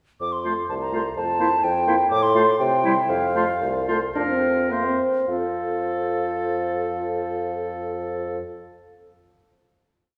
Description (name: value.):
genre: quick classical-period movement for wind quintet.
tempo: 101-128 BPM.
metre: 2/4.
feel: rubato.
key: F major.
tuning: A4 = 441 Hz.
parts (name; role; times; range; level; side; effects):
concert flute; melody; 0.2-8.4 s; C5 to D6; -28 LUFS; equal; none.
mellow bassoon; bass; 0.2-8.4 s; C2 to C3; -29 LUFS; equal; none.
clear clarinet; accompaniment; 0.4-8.4 s; E4 to Bb4; -33 LUFS; equal; none.
mellow oboe; second line; 0.5-8.4 s; A4 to C5; -32 LUFS; equal; none.
warm French horn; accompaniment; 0.5-8.4 s; G3 to F4; -29 LUFS; equal; none.
room: wet scoring stage reverb, RT60 2.0 s.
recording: recorded in a church or concert hall.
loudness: -23 LUFS.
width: mono.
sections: 0.2-4.2 A section; 4.2-5.3 coda; 5.3-7.6 final chord.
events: slowing down 2.6-5.3.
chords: 0.2 F; 1.2 C7/F (rootless); 2.1 F/A; 2.6 C; 3.1 F; 4.2 Bb5/F; 4.7 C7/F; 5.3 F.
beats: | 0.21 0.70 | 1.17 1.64 | 2.11 2.60 | 3.10 3.61 | 4.15 4.71 | 5.29 5.87 | 6.46 7.05.